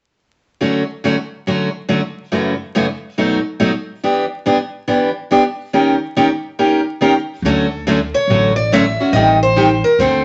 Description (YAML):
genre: acoustic string swing (jazz manouche)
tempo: 140 BPM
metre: 4/4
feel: swing 63% on 8ths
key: D major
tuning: A4 = 444 Hz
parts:
  - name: picked steel-string acoustic guitar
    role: accompaniment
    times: 0.6-10.2 s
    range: F#2 to Bb4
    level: -17 LUFS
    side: equal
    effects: none
  - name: upright bass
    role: bass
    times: 7.4-10.2 s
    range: A1 to D2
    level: -22 LUFS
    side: equal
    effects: none
  - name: picked steel-string acoustic guitar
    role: melody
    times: 7.5-10.2 s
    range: A4 to E5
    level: -18 LUFS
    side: equal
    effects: none
room: moderate studio reverb, RT60 0.7 s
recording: vinyl crackle, nothing above 8.0 kHz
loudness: -16 LUFS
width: mono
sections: 0.6-7.4 A section; 7.4-10.2 B section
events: none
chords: 0.6 Dmaj7; 2.3 F#m7; 3.2 B7; 4.0 Em7; 5.7 Eb7; 7.4 Dmaj7; 9.1 Am7b5